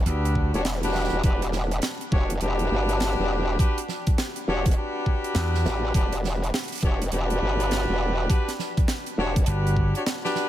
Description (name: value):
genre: glitch hop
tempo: 102 BPM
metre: 4/4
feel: swing 63% on 16ths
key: E dorian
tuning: A4 = 440 Hz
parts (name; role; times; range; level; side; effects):
- growl bass; bass; 0.0-9.5 s; E1 to A1; -26 LUFS; equal; chorus
- warm horn section; stabs; 0.1-10.5 s; D4 to C#5; -28 LUFS; left 1 dB; sidechain pumping, analog delay
- vintage slap bass; bass; 0.1-0.5, 5.4-5.6, 9.5-9.9 s; G1 to E2; -23 LUFS; equal; none
- crisp fusion drum kit; drums; 0.1-10.5 s; hi-hat, snare drum; -32 LUFS; right 2 dB; none
- electronic kick drum; drums; 0.4-9.9 s; none; -22 LUFS; equal; overdrive
room: light reverb, small room ambience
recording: none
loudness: -22 LUFS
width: side -12 dB against mid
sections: 0.0-10.5 A section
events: none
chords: 0.0 Em7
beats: 0.06 0.65 | 1.24 1.83 2.41 3.00 | 3.59 4.18 4.77 5.36 | 5.94 6.53 7.12 7.71 | 8.30 8.88 9.47 10.06